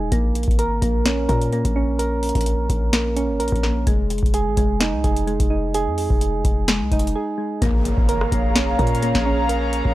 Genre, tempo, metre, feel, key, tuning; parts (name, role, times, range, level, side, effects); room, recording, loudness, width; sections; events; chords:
hip hop, trap; 128 BPM; 4/4; half-time; Bb minor; A4 = 441 Hz
soft electric-piano-like synth keys; arpeggios; 0.0-9.9 s; Ab3 to Bb4; -22 LUFS; right 2 dB; chorus, analog delay
warm 808-style bass; bass; 0.0-9.9 s; Eb1 to Bb2; -24 LUFS; equal
booming analog drum machine; drums; 0.1-9.9 s; hi-hat, kick drum, rim click, snare drum; -20 LUFS; equal
airy breathy pad; sustained chords; 7.6-9.9 s; Ab4 to Bb5; -24 LUFS; left 1 dB; chorus
impact; sound effects; 7.6-9.5 s; -30 LUFS; equal
little or no reverb; dry, gritty hardware recording; -18 LUFS; side -16 dB against mid
0.0-7.6 A section; 7.6-9.9 B section
break 7.2-7.6; impact 7.6-9.5
0.1 Bbm7; 3.9 Fm7; 7.6 Bbm7